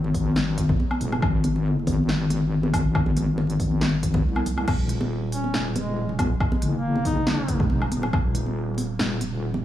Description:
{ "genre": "deep dubstep", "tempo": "139 BPM", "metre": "4/4", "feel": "swing 54% on 16ths, half-time", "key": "Eb dorian", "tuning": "A4 = 439 Hz", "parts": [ { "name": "wobble bass", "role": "bass", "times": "0.0-9.6 s", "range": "Eb1 to C2", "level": "-24 LUFS", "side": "left 1 dB", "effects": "chorus" }, { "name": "congas", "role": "percussion", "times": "0.0-9.6 s", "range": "none", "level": "-31 LUFS", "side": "right 2 dB", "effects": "dub echo" }, { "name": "deep house drum kit", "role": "drums", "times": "0.1-9.3 s", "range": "crash cymbal, hi-hat, snare drum, woodblock", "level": "-30 LUFS", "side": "left 1 dB", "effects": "none" }, { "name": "electronic kick drum", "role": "drums", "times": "0.1-8.2 s", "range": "none", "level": "-24 LUFS", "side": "equal", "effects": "none" }, { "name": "warm duduk", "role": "melody", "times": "5.3-7.7 s", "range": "Ab3 to Eb4", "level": "-32 LUFS", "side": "left 1 dB", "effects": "dub echo" } ], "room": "little or no reverb", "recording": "vinyl crackle, studio ambience", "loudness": "-21 LUFS", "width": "side -12 dB against mid", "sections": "0.0-4.7 A section; 4.7-9.6 A section", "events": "drop 0.0-4.7, 4.7-9.6", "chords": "0.0 N.C.; 4.7 Ebm" }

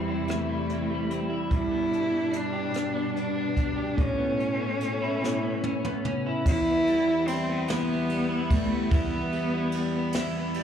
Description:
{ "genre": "six-eight pop ballad", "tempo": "49 BPM (dotted quarters)", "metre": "6/8", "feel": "straight", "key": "unclear", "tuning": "A4 = 440 Hz", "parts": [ { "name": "rich cello", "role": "melody", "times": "0.0-10.1 s", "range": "G3 to E4", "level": "-28 LUFS", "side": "equal", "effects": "plate reverb, slapback echo, tape echo" }, { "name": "clean electric guitar", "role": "accompaniment", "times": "0.0-10.6 s", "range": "E2 to G4", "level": "-29 LUFS", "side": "equal", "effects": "double-tracked left and right, plate reverb" }, { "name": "warm studio string section", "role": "sustained chords", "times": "0.0-6.4 s", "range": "E2 to E4", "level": "-34 LUFS", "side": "equal", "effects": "plate reverb" }, { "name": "jazz brush drum kit", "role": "drums", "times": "0.3-10.6 s", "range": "crash cymbal, hi-hat, kick drum, ride cymbal, rim click, snare drum, toms", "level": "-30 LUFS", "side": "equal", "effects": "none" } ], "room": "moderate club reverb, RT60 0.6 s", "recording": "live gig heard through the venue's PA, club reverb", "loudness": "-24 LUFS", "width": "side -8 dB against mid", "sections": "0.0-6.5 A section; 6.5-10.6 B section", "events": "drum fill 5.2-6.5", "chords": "0.0 C/E; 1.5 G; 4.0 Aadd9; 6.5 Em" }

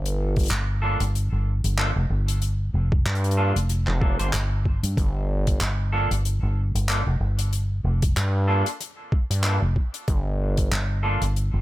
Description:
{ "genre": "glitch hop", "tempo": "94 BPM", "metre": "4/4", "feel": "swing 57% on 16ths", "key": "G minor", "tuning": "A4 = 440 Hz", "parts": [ { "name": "gritty driven synth bass", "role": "bass", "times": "0.0-10.7 s", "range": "F1 to G2", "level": "-23 LUFS", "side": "equal", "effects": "none" }, { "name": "soft-mallet drum kit", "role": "drums", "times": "0.1-11.5 s", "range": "handclaps, hi-hat, rim click", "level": "-30 LUFS", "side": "left 1 dB", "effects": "none" }, { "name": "electronic kick drum", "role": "drums", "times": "0.4-10.7 s", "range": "none", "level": "-22 LUFS", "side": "equal", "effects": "overdrive" }, { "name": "vintage muted fingered electric bass", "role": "bass", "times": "0.5-11.6 s", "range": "F1 to G2", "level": "-23 LUFS", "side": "equal", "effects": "tube saturation" }, { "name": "clean electric guitar", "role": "stabs", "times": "0.8-11.2 s", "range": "Bb3 to C5", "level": "-30 LUFS", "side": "right 1 dB", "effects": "sidechain pumping, dub echo" } ], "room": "little or no reverb", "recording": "none", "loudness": "-21 LUFS", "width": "side -16 dB against mid", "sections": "0.0-11.6 A section", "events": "none", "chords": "0.0 Gm9" }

